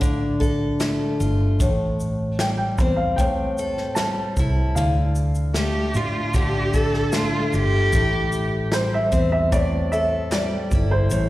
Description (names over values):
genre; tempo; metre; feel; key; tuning
acoustic pop; 76 BPM; 4/4; straight; D minor; A4 = 437 Hz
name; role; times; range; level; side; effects
picked steel-string acoustic guitar; accompaniment; 0.0-11.3 s; A2 to A4; -24 LUFS; left 2 dB; slapback echo
vintage muted fingered electric bass; bass; 0.0-11.3 s; G1 to A2; -23 LUFS; equal; none
natural country drum kit; drums; 0.0-11.3 s; kick drum, shaker, snare drum; -25 LUFS; equal; none
group handclap; percussion; 0.8-10.5 s; none; -38 LUFS; right 2 dB; none
dark upright piano; melody; 2.4-11.3 s; C5 to A5; -25 LUFS; equal; slapback echo, tape echo
rich cello; second line; 5.6-8.5 s; F4 to A4; -24 LUFS; right 1 dB; slapback echo, tape echo
room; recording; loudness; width
light reverb, studio reverb; live gig heard through the venue's PA, recital hall reverb; -19 LUFS; side -16 dB against mid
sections
0.0-11.3 A section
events
none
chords
0.0 Dm; 1.6 Am7; 4.8 Dm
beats
0.02 0.81 | 1.60 2.39 3.18 3.97 | 4.77 5.56 6.35 7.14 | 7.94 8.73 9.52 10.32 | 11.11